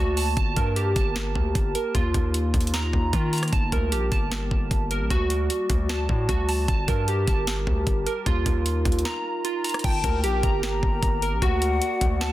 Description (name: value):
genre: hip hop, trap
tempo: 152 BPM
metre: 4/4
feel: half-time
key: G minor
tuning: A4 = 440 Hz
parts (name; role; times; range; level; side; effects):
- glass harmonica; sustained chords; 0.0-12.3 s; G3 to D5; -34 LUFS; equal; none
- glassy digital keys; arpeggios; 0.0-12.3 s; F4 to Bb5; -27 LUFS; right 2 dB; chorus, low-pass filter, tape echo
- hard-hitting 808-style bass; bass; 0.0-12.3 s; G1 to Eb3; -26 LUFS; equal; none
- trap drum kit; drums; 0.2-12.3 s; crash cymbal, hi-hat, kick drum, rim click, snare drum; -25 LUFS; equal; none
- mellow hollow silver concert flute; second line; 9.8-12.3 s; F#5 to Bb5; -29 LUFS; left 5 dB; tape echo
room: digital ambience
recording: dense, heavily limited modern master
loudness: -21 LUFS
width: side -15 dB against mid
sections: 0.0-9.8 A section; 9.8-12.3 B section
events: break 9.1-9.8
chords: 0.4 Gmadd9; 1.9 Ebsus2; 3.5 Gmadd9; 5.1 D; 6.7 Gmadd9; 8.3 Ebsus2; 9.8 Gmadd9; 11.4 D